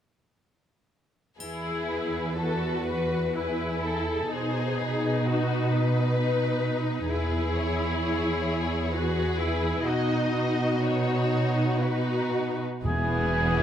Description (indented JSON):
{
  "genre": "classical, slow romantic movement for symphony orchestra",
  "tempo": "56-66 BPM",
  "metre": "3/4",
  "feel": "rubato",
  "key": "E major",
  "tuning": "A4 = 441 Hz",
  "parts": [
    { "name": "warm symphonic violin section", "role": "melody", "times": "1.4-13.6 s", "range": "G#4 to D#5", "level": "-36 LUFS", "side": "left 4 dB", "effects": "none" },
    { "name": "dark symphonic violin section", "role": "second line", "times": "1.4-13.6 s", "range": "D#4 to B4", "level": "-31 LUFS", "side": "left 3 dB", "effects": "none" },
    { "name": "rich symphonic viola section", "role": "accompaniment", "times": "1.4-13.6 s", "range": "E3 to F#4", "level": "-30 LUFS", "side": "left 1 dB", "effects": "none" },
    { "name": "warm symphonic cello section", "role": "bass", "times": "1.4-13.6 s", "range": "E2 to B2", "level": "-28 LUFS", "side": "right 2 dB", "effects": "none" },
    { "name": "triangle", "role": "percussion", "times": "1.4-3.3 s", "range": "none", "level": "-47 LUFS", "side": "left 2 dB", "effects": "none" },
    { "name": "rich symphonic double bass section", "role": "bass", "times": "12.8-13.6 s", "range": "E1", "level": "-30 LUFS", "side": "right 2 dB", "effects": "none" },
    { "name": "timpani", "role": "percussion", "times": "12.8-13.6 s", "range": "E2", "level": "-29 LUFS", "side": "right 1 dB", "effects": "none" },
    { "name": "mellow oboe", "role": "second line", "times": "12.9-13.6 s", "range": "G#4", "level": "-27 LUFS", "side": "equal", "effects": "none" }
  ],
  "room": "moderate concert hall reverb, RT60 2.1 s",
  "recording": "none",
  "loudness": "-24 LUFS",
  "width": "side -9 dB against mid",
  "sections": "1.4-12.8 A section",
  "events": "none",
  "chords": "1.4 E; 4.3 B; 7.1 E; 9.9 B; 12.8 E"
}